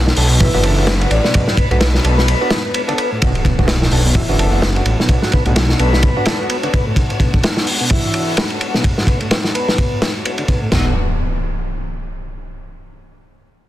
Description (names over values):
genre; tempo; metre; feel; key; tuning
breakbeat, breaks; 128 BPM; 4/4; swing 57% on 16ths; B minor; A4 = 440 Hz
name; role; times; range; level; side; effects
warm studio string section; sustained chords; 0.0-10.9 s; B2 to B4; -26 LUFS; left 3 dB; vintage 12-bit sampler grit, sidechain pumping
detuned saw bass; bass; 0.0-6.1, 10.7-10.9 s; F#1 to B1; -16 LUFS; equal; none
crunchy breakbeat drum kit; drums; 0.1-10.8 s; crash cymbal, hi-hat, kick drum, ride cymbal, snare drum, toms; -16 LUFS; equal; none
clear concert grand piano; stabs; 0.2-6.7 s; B3 to A4; -24 LUFS; right 2 dB; ping-pong delay
tonewheel organ; riff; 0.3-10.9 s; A2 to B3; -23 LUFS; equal; slow rotary speaker, vintage 12-bit sampler grit, low-pass filter, ping-pong delay
marimba with hard mallets; melody; 0.4-2.4 s; B4 to D5; -25 LUFS; equal; AM radio sound, ping-pong delay
impact; sound effects; 3.2-5.1, 10.7-12.6 s; none; -24 LUFS; equal; none
room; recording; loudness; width
light reverb, small room ambience; dense, heavily limited modern master; -13 LUFS; side -14 dB against mid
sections
0.0-3.2 A section; 3.2-10.7 B section; 10.7-12.6 C section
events
drop 0.0-3.2; break 2.3-3.2; impact 3.2-5.1; filter sweep on tonewheel organ 3.2-10.7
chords
0.0 Bm; 10.7 N.C.